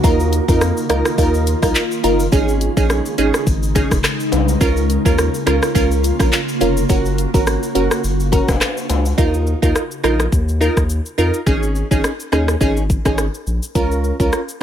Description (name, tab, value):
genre	dancehall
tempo	105 BPM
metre	4/4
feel	swing 56% on 16ths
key	unclear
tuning	A4 = 440 Hz
part	wavetable chord stab	accompaniment	0.0-14.6 s	Db4 to Bb4	-19 LUFS	right 2 dB	none
part	ethereal airy pad	sustained chords	0.0-9.2 s	Db3 to Gb4	-24 LUFS	left 1 dB	ensemble chorus, built-in reverb, sidechain pumping
part	saturated sub bass	bass	0.0-14.3 s	F1 to F2	-19 LUFS	equal	none
part	afro-pop drum kit	drums	0.0-14.6 s	handclaps, hi-hat, kick drum, rim click, shaker	-19 LUFS	left 1 dB	none
part	tube shaker and timbales	percussion	0.0-9.2 s	none	-30 LUFS	left 3 dB	none
room	digital ambience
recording	none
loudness	-14 LUFS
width	side -10 dB against mid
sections	0.0-9.2 A section; 9.2-14.6 B section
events	none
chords	0.0 Ebsus2; 2.3 Absus4; 4.6 Db6; 6.9 Gb; 9.2 Ebsus2; 11.5 Absus4; 13.8 Db6